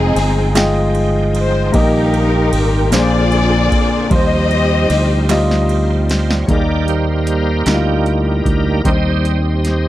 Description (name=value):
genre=slow gospel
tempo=51 BPM (dotted quarters)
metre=6/8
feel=straight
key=Eb major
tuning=A4 = 440 Hz
part: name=warm studio string section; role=melody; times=0.0-5.7 s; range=C4 to Eb5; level=-18 LUFS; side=left 2 dB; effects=none
part: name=clear concert grand piano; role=accompaniment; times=0.0-9.9 s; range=Bb2 to G5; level=-18 LUFS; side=left 2 dB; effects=none
part: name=bright tonewheel organ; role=sustained chords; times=0.0-9.9 s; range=D3 to G5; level=-22 LUFS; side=right 4 dB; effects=slow rotary speaker, overdrive, chorus vibrato
part: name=fingered electric bass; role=bass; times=0.0-9.9 s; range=F1 to Eb2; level=-16 LUFS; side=equal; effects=none
part: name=electro analog drum machine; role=drums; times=0.2-9.8 s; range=hi-hat, kick drum, ride cymbal, snare drum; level=-20 LUFS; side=equal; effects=none
part: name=group handclap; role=percussion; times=0.6-8.0 s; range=none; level=-23 LUFS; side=right 9 dB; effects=none
room=little or no reverb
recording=dry, close 1970s-style studio recording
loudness=-12 LUFS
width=side -14 dB against mid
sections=0.0-6.5 A section; 6.5-9.9 B section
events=drum fill 5.3-6.5; tonewheel organ solo 6.5-9.9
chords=0.0 Fm9; 1.7 Eb/Bb; 2.9 Bb9; 4.1 Eb69; 6.5 Eb; 8.8 Cm/Eb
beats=0.56 | 1.74 2.92 | 4.11 5.29 | 6.48 7.66 | 8.85